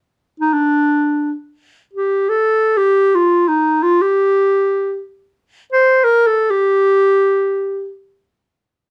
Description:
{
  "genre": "Arabic maqam ensemble",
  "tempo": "free time",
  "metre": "none",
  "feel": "none",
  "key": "unclear",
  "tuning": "A4 = 440 Hz",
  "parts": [
    { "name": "warm clarinet", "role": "solo", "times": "0.4-7.9 s", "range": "D4 to C5", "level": "-15 LUFS", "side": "equal", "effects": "none" }
  ],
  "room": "moderate studio reverb, RT60 0.5 s",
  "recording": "dark, warm production",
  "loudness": "-15 LUFS",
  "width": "mono",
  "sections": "0.0-1.4 A section; 1.4-8.9 A section",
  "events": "none",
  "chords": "none",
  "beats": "free time"
}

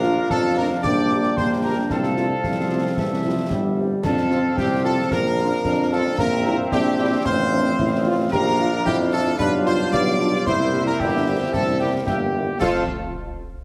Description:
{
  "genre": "military-style march for wind band",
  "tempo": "112 BPM",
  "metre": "2/4",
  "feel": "straight",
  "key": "F major",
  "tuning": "A4 = 440 Hz",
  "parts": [
    { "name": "clear trumpet section", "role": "melody", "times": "0.0-12.8 s", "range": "G4 to D5", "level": "-29 LUFS", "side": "equal", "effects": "none" },
    { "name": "clear euphonium", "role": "second line", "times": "0.0-12.3 s", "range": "Bb3 to G4", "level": "-28 LUFS", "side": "equal", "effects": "none" },
    { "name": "hollow wooden piccolo", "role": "second line", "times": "0.0-12.9 s", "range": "G5 to D6", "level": "-32 LUFS", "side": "equal", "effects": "none" },
    { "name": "mellow woodwind section", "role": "second line", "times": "0.0-12.8 s", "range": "C4 to G5", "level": "-32 LUFS", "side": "equal", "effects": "none" },
    { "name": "mellow French horn section", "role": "accompaniment", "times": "0.0-12.8 s", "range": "F3 to G4", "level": "-32 LUFS", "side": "equal", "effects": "none" },
    { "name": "bright trombone section", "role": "sustained chords", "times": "0.0-12.8 s", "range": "E3 to F4", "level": "-30 LUFS", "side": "equal", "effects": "none" },
    { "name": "clear tuba", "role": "bass", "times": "0.0-12.8 s", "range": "G1 to F2", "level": "-26 LUFS", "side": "equal", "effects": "none" },
    { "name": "concert snare drum, concert bass drum and clash cymbals", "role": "drums", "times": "0.0-12.9 s", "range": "none", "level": "-32 LUFS", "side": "equal", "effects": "none" }
  ],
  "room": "wet recital hall reverb, RT60 1.5 s",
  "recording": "heavily compressed radio sound",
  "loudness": "-21 LUFS",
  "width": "mono",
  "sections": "0.0-12.6 A section; 12.6-13.6 B section",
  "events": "none",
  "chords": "0.0 Bbmaj7; 0.8 Gm/Bb; 1.9 F/C; 3.0 C; 4.0 F; 5.1 Bb; 6.2 C7/Bb; 7.3 F/A; 8.3 Bb; 9.4 G7/B; 10.5 C7; 12.6 F",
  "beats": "0.30 | 0.84 1.37 | 1.91 2.44 | 2.98 3.51 | 4.05 4.58 | 5.12 5.65 | 6.19 6.72 | 7.26 7.79 | 8.33 8.86 | 9.40 9.93 | 10.46 11.00 | 11.54 12.07 | 12.60"
}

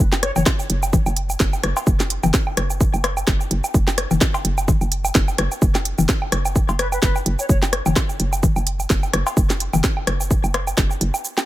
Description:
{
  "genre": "minimal techno",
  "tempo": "128 BPM",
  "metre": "4/4",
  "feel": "swing 56% on 16ths",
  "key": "unclear",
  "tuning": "A4 = 439 Hz",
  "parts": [
    { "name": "hollow knocking FM bass", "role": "bass", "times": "0.0-11.1 s", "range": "F#1", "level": "-23 LUFS", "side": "equal", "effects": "sidechain pumping" },
    { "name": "house drum kit", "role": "drums", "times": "0.1-11.5 s", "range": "hi-hat, shaker, snare drum", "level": "-24 LUFS", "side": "right 1 dB", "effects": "none" },
    { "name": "booming analog drum machine", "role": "percussion", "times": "0.1-11.5 s", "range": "cowbell, rim click, toms, woodblock", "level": "-24 LUFS", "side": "left 2 dB", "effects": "tape echo" },
    { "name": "silver concert flute", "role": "melody", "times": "0.2-0.4, 6.8-7.6 s", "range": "B4 to C#5", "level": "-30 LUFS", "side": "left 1 dB", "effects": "tape echo" },
    { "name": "electronic kick drum", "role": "drums", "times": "0.5-10.9 s", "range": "none", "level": "-19 LUFS", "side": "equal", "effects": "none" }
  ],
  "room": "little or no reverb",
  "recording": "none",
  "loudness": "-17 LUFS",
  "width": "side -15 dB against mid",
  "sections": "0.0-11.5 A section",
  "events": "none",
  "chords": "0.0 F#5",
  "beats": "0.46 0.93 1.40 | 1.87 2.34 2.81 3.28 | 3.74 4.21 4.68 5.15 | 5.62 6.09 6.56 7.03 | 7.49 7.96 8.43 8.90 | 9.37 9.84 10.31 10.78 | 11.24"
}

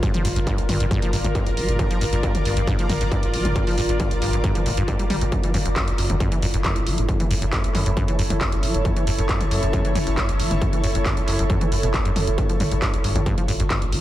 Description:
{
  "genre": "driving peak-time techno",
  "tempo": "136 BPM",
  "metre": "4/4",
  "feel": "straight",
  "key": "F# phrygian",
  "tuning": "A4 = 443 Hz",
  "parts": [
    { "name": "acid bass, saw", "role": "riff", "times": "0.0-14.0 s", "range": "F#1 to G3", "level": "-26 LUFS", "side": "equal", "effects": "sidechain pumping, diffuse ambient delay" },
    { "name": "saturated sub bass", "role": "bass", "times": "0.0-14.0 s", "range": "F#1 to G1", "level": "-26 LUFS", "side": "equal", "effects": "overdrive, sidechain pumping, low-pass filter" },
    { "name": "electronic kick drum", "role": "drums", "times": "0.0-13.8 s", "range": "none", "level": "-24 LUFS", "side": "equal", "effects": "distortion" },
    { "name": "techno drum kit", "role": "drums", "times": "0.0-14.0 s", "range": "handclaps, hi-hat, toms", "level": "-28 LUFS", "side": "left 1 dB", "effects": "sidechain pumping on hats, sidechain pumping on toms" },
    { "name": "granular cloud pad", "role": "texture", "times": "0.0-14.0 s", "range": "E4 to D5", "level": "-26 LUFS", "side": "equal", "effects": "built-in reverb, sidechain pumping" }
  ],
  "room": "light reverb",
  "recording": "none",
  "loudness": "-19 LUFS",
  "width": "side -14 dB against mid",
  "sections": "0.0-14.0 A section",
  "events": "none",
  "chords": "0.0 Gm; 5.3 F#m; 12.4 Gm",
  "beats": "| 0.03 0.47 0.91 1.35 | 1.79 2.23 2.67 3.12 | 3.56 4.00 4.44 4.88 | 5.32 5.76 6.20 6.64 | 7.09 7.53 7.97 8.41 | 8.85 9.29 9.73 10.17 | 10.62 11.06 11.50 11.94 | 12.38 12.82 13.26 13.70"
}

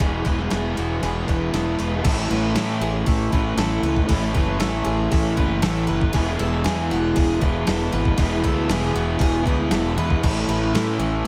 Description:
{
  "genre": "rock, shoegaze and dream pop",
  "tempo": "117 BPM",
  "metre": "4/4",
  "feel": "straight",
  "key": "A major",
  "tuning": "A4 = 440 Hz",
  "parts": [
    { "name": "picked twelve-string acoustic guitar", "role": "arpeggios", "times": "0.0-11.2 s", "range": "F#4 to B4", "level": "-32 LUFS", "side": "equal", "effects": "lush chorus, delay" },
    { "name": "overdriven semi-hollow guitar", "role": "riff", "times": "0.0-11.3 s", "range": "E2 to E4", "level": "-27 LUFS", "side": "equal", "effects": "subtle chorus" },
    { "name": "raw garage guitar", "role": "riff", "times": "0.0-11.3 s", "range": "E2 to E4", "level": "-30 LUFS", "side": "equal", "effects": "overdrive, reverse reverb" },
    { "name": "fuzz fingered electric bass", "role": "bass", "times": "0.0-11.2 s", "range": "E1 to A2", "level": "-27 LUFS", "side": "equal", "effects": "overdrive" },
    { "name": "crisp 8-bit digital drum machine", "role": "drums", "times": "0.0-10.9 s", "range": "crash cymbal, hi-hat, kick drum, snare drum", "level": "-26 LUFS", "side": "equal", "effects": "none" }
  ],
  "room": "moderate plate reverb, RT60 1.4 s",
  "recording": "dreamy mix soaked in reverb",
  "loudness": "-21 LUFS",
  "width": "mono",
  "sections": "0.0-2.0 A section; 2.0-11.3 B section",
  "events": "none",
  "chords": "0.0 E; 2.0 Aadd9; 6.1 E; 10.2 Aadd9",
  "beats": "0.51 1.02 1.53 | 2.05 2.56 3.07 3.58 | 4.09 4.60 5.12 5.63 | 6.14 6.65 7.16 7.67 | 8.18 8.69 9.20 9.71 | 10.23 10.74 11.25"
}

